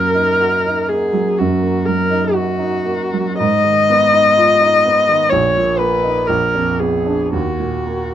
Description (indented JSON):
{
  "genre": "classical, romantic duo for viola and grand piano",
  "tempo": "56-65 BPM",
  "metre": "4/4",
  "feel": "rubato",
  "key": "Eb minor",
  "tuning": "A4 = 440 Hz",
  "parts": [
    { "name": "warm viola", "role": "melody", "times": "0.0-8.1 s", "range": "Gb4 to Eb5", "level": "-14 LUFS", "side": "left 2 dB", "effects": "none" },
    { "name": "warm grand piano", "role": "accompaniment", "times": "0.0-8.1 s", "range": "Bb1 to Gb4", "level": "-18 LUFS", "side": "right 3 dB", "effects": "none" }
  ],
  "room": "light reverb",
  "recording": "dark, warm production",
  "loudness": "-13 LUFS",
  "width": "side -10 dB against mid",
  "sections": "0.0-8.1 A section",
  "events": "none",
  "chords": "0.0 Ebm/Gb; 3.4 Fm7b5/Ab; 5.3 Eb5/Bb; 6.3 Bb7b9; 7.3 Ebm",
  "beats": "0.41 1.39 2.34 | 3.38 4.37 5.30 6.29 | 7.34"
}